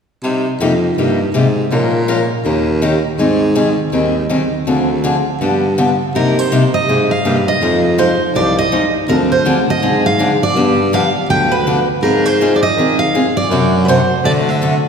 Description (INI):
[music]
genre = acoustic string swing (jazz manouche)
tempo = 163 BPM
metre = 4/4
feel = swing 62% on 8ths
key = C minor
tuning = A4 = 439 Hz
[part]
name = picked acoustic archtop guitar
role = accompaniment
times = 0.2-14.7 s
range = C3 to C5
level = -16 LUFS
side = left 2 dB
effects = none
[part]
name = clear baritone saxophone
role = bass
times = 0.2-14.8 s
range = C2 to Eb3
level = -16 LUFS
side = equal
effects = none
[part]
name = picked steel-string acoustic guitar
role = melody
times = 6.2-14.8 s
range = Bb4 to G5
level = -16 LUFS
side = right 2 dB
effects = none
[sound]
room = wet concert hall reverb, RT60 2.1 s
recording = recorded in a church or concert hall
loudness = -12 LUFS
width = side -6 dB against mid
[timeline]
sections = 0.2-6.1 A section; 6.1-14.9 B section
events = none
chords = 0.2 Cm7; 1.7 Bbm7; 2.5 Eb7; 3.2 Abmaj7; 4.7 Dm7b5; 5.4 G7; 6.1 Cm7; 7.6 Fm7; 9.1 Dm7b5; 10.6 G7; 12.0 Ab6; 13.5 D7/F#